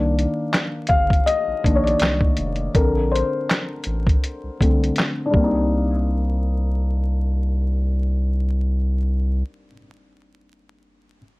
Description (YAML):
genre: lo-fi hip hop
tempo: 81 BPM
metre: 4/4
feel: swing 55% on 16ths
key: C dorian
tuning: A4 = 440 Hz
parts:
  - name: felt-muted upright piano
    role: accompaniment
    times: 0.0-11.2 s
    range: D3 to F5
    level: -22 LUFS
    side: left 2 dB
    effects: low-pass filter
  - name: saturated sub bass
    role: bass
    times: 0.0-9.4 s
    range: F1 to C2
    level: -21 LUFS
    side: equal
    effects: none
  - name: lo-fi sampler-style drum kit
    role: drums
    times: 0.2-5.5 s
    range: handclaps, hi-hat, kick drum, snare drum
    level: -19 LUFS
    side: equal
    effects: vintage 12-bit sampler grit
room: light reverb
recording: vinyl crackle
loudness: -18 LUFS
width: side -21 dB against mid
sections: 0.0-5.7 A section; 5.7-8.7 B section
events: felt piano solo 0.0-5.7; filter sweep on felt piano 0.0-5.7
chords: 0.0 Cm9; 2.7 Bbmaj9; 5.3 Cm9